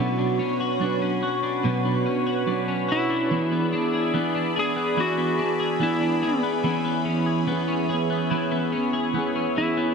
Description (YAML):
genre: dream pop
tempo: 72 BPM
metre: 4/4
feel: straight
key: unclear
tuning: A4 = 440 Hz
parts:
  - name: clean electric guitar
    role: accompaniment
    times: 0.0-9.9 s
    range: B2 to G#4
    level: -28 LUFS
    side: right 5 dB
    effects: harmonic tremolo, wide subtle chorus
  - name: phased analog pad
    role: sustained chords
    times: 0.0-9.9 s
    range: E3 to B5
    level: -27 LUFS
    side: right 1 dB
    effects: phaser, chorus
  - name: twelve-string electric guitar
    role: arpeggios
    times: 0.0-9.9 s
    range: B2 to G#4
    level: -27 LUFS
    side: left 4 dB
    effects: analog chorus, ping-pong delay
  - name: electric slide guitar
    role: melody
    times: 2.9-9.9 s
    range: E4 to G#4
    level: -26 LUFS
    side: equal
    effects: ping-pong delay
room: wet concert hall reverb, RT60 1.8 s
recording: none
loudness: -21 LUFS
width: side -5 dB against mid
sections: 0.0-9.9 A section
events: none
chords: 0.0 Bmadd9; 3.3 E7; 6.6 C#m7/E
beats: 0.81 1.64 2.48 | 3.31 4.14 4.98 5.81 | 6.64 7.48 8.31 9.14